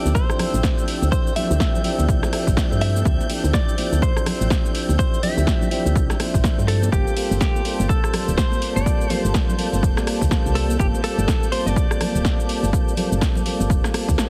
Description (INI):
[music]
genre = deep house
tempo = 124 BPM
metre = 4/4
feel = swing 59% on 16ths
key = D minor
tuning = A4 = 440 Hz
[part]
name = direct-recorded clean electric guitar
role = melody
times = 0.0-14.2 s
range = G4 to E5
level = -31 LUFS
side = equal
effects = dub echo
[part]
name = warbly tape-like pad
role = sustained chords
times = 0.0-14.3 s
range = Bb3 to E6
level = -38 LUFS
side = equal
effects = chorus, built-in reverb, sidechain pumping
[part]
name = tonewheel organ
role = stabs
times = 0.0-14.3 s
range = F3 to C5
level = -30 LUFS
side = equal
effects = overdrive, slow rotary speaker, sidechain pumping, dub echo
[part]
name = airy breathy pad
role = texture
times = 0.0-14.3 s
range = D4 to E6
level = -37 LUFS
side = equal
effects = chorus, sidechain pumping
[part]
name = dark studio violin section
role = texture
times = 0.0-14.3 s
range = G6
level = -40 LUFS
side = equal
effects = sidechain pumping
[part]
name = woody FM bass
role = bass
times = 0.1-14.2 s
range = D1 to G2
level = -23 LUFS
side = equal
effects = sidechain pumping
[part]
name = punchy analog drum machine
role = drums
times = 0.1-14.3 s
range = hi-hat, rim click, shaker, snare drum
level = -30 LUFS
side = equal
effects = none
[part]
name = congas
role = percussion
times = 0.1-14.3 s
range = none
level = -33 LUFS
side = equal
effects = none
[part]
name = electronic kick drum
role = drums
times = 0.2-14.2 s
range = none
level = -23 LUFS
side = equal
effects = none
[sound]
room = digital ambience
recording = heavily compressed radio sound, multiband compression, vinyl crackle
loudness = -20 LUFS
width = mono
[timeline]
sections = 0.0-14.3 A section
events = none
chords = 0.0 Dm11; 6.9 Gm11